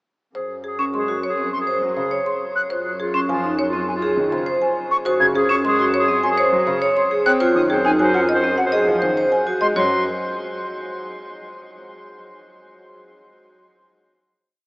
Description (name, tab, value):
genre	classical, minimalist pattern music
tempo	102 BPM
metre	4/4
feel	straight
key	unclear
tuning	A4 = 441 Hz
part	marimba with medium hard mallets	melody	0.3-10.0 s	Ab4 to C6	-25 LUFS	left 1 dB	none
part	bright clarinet	second line	0.3-9.5 s	F4 to C5	-24 LUFS	equal	none
part	rich studio double bass section	bass	0.3-10.0 s	Gb2	-29 LUFS	equal	none
part	silver concert flute	arpeggios	0.8-10.0 s	Gb5 to Ab6	-24 LUFS	equal	none
part	vibraphone with hard mallets	arpeggios	0.8-10.0 s	C4 to Db5	-22 LUFS	equal	none
part	warm concert grand piano	accompaniment	0.9-10.0 s	Db3 to Db4	-27 LUFS	equal	none
room	wet huge ambient reverb, RT60 7.6 s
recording	in a vast, echoing space, small speaker sound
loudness	-17 LUFS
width	side -27 dB against mid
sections	0.4-9.8 A section; 9.8-12.1 final chord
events	none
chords	0.4 Gbsus2; 2.7 Dbmaj7/Gb; 5.1 Gbsus2; 7.4 Ab7/Gb; 9.8 Gb5